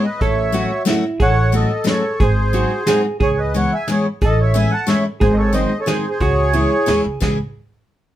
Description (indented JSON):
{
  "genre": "musette waltz",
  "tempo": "180 BPM",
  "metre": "3/4",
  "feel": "straight",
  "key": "C# minor",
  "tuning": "A4 = 440 Hz",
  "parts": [
    { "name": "accordion", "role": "melody", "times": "0.0-7.4 s", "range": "G#4 to A5", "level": "-20 LUFS", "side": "right 1 dB", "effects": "light tremolo tuning" },
    { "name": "hollow-body jazz guitar", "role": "second line", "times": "0.0-7.4 s", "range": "E4 to A4", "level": "-22 LUFS", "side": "right 4 dB", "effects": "none" },
    { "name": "picked steel-string acoustic guitar", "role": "accompaniment", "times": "0.0-7.4 s", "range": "C#3 to F#4", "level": "-20 LUFS", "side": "left 3 dB", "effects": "none" },
    { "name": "upright bass", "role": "bass", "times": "0.2-7.4 s", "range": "G#1 to D#2", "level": "-19 LUFS", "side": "equal", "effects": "none" },
    { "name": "vintage brush drum kit", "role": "drums", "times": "0.2-7.3 s", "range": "hi-hat, kick drum, snare drum", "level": "-22 LUFS", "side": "equal", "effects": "none" }
  ],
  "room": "light reverb",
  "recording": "minimal, uncompressed stereo recording",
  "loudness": "-15 LUFS",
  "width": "side -12 dB against mid",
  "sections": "0.0-7.2 A section",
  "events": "none",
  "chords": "0.2 A6; 2.2 G#7; 3.2 C#m7; 4.2 Amaj7; 5.2 G#7; 6.2 C#m"
}